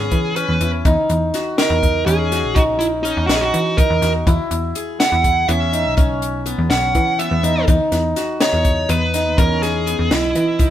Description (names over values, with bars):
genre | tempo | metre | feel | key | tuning
progressive instrumental, band music in an uneven meter | 246 BPM (eighths) | 7/8 | straight | E lydian | A4 = 445 Hz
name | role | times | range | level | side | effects
dark smooth lead guitar | melody | 0.0-10.7 s | D#4 to F#5 | -20 LUFS | right 2 dB | overdrive
qanun | arpeggios | 0.0-10.7 s | B3 to D#5 | -21 LUFS | left 1 dB | none
plucky analog bass | bass | 0.0-10.7 s | A#1 to E3 | -21 LUFS | equal | none
compact cocktail drum kit | drums | 0.1-10.7 s | hi-hat, kick drum, snare drum | -19 LUFS | equal | none
room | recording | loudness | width
light reverb | band playing live in one room | -15 LUFS | side -11 dB against mid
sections
0.0-10.7 A section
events
none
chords
0.0 C#m7; 0.9 D#m7; 4.3 Eadd9; 7.7 C#m11; 9.4 Emaj7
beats
0.12 0.36 0.61 | 0.85 1.10 1.34 1.58 1.83 2.07 2.32 | 2.56 2.80 3.05 3.29 3.54 3.78 4.02 | 4.27 4.51 4.75 5.00 5.24 5.49 5.73 | 5.97 6.22 6.46 6.70 6.95 7.19 7.43 | 7.68 7.92 8.16 8.41 8.65 8.89 9.14 | 9.38 9.62 9.87 10.11 10.35 10.59